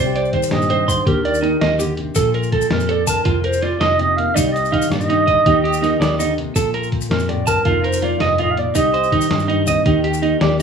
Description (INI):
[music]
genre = highlife guitar band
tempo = 109 BPM (dotted quarters)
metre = 12/8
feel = straight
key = Bb major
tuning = A4 = 440 Hz
[part]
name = dark clarinet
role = melody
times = 0.0-9.5 s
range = Bb4 to F5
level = -20 LUFS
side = right 1 dB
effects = none
[part]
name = nylon-string guitar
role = accompaniment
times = 0.0-10.6 s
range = F2 to G4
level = -24 LUFS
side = left 4 dB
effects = none
[part]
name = electric guitar at the edge of break-up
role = arpeggios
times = 0.0-10.6 s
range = Eb4 to C6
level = -19 LUFS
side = right 4 dB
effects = none
[part]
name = fingered electric bass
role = bass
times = 0.0-10.6 s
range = F1 to G2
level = -23 LUFS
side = equal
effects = none
[part]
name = lo-fi sampler-style drum kit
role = drums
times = 0.2-10.6 s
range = hi-hat, kick drum, snare drum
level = -23 LUFS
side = left 1 dB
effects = none
[part]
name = maracas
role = percussion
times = 0.3-10.2 s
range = none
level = -29 LUFS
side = left 7 dB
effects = none
[sound]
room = wet large studio reverb, RT60 0.9 s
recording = band playing live in one room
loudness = -15 LUFS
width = side -6 dB against mid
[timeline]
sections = 0.0-10.6 A section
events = none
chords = 0.0 Cmadd9; 1.1 Ebmaj7; 2.2 Bb5; 3.3 F7sus4; 4.4 Cmadd9; 5.5 Ebmaj7; 6.6 Bb5; 7.7 F7sus4; 8.8 Cm; 9.9 Ebmaj7